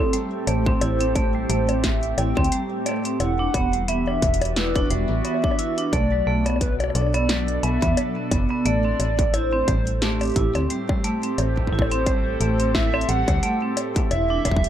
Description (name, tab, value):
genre	IDM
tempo	88 BPM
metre	4/4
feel	swing 56% on 16ths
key	A dorian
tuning	A4 = 440 Hz
part	warbly nostalgic lead	melody	0.0-14.7 s	G4 to G5	-27 LUFS	right 1 dB	analog chorus, ping-pong delay
part	warbly tape-like pad	sustained chords	0.0-14.7 s	A2 to D5	-30 LUFS	equal	chorus, built-in reverb
part	vibraphone with hard mallets	arpeggios	0.0-14.6 s	F#3 to E4	-26 LUFS	right 1 dB	low-pass filter, ping-pong delay
part	electro analog drum machine	drums	0.1-14.7 s	bongos, hi-hat, snare drum	-28 LUFS	left 2 dB	none
part	metallic FM bass	bass	0.5-14.7 s	E1 to E2	-24 LUFS	equal	none
part	electronic kick drum	drums	0.7-14.6 s	none	-24 LUFS	equal	distortion
room	little or no reverb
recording	none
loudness	-19 LUFS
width	side -10 dB against mid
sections	0.0-14.7 A section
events	none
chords	0.0 Am7; 3.2 Em7; 5.9 Bm7; 8.7 Am7; 14.1 Em7